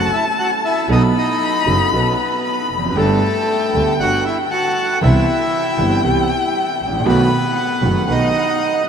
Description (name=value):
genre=tango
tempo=117 BPM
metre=4/4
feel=rubato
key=unclear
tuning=A4 = 440 Hz
part: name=bandoneon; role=melody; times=0.0-8.9 s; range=A3 to F#5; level=-19 LUFS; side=equal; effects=none
part: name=warm violin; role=second line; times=0.0-8.9 s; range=F#5 to B5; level=-21 LUFS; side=left 4 dB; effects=none
part: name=bright concert grand piano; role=accompaniment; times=0.0-8.3 s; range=F#1 to A4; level=-20 LUFS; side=right 2 dB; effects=none
part: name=clear double bass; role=bass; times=0.0-8.3 s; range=F1 to D2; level=-20 LUFS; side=right 1 dB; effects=none
room=wet huge ambient reverb, RT60 8.6 s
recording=in a vast, echoing space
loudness=-14 LUFS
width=side -7 dB against mid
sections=0.0-8.9 A section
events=none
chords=0.0 F#m; 0.9 B7; 3.0 Gadd9; 5.0 Cmaj7; 7.1 B7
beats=0.38 | 0.89 1.41 1.92 2.44 | 2.96 3.48 3.99 4.51 | 5.02 5.53 6.04 6.55 | 7.06 7.57 8.08 8.60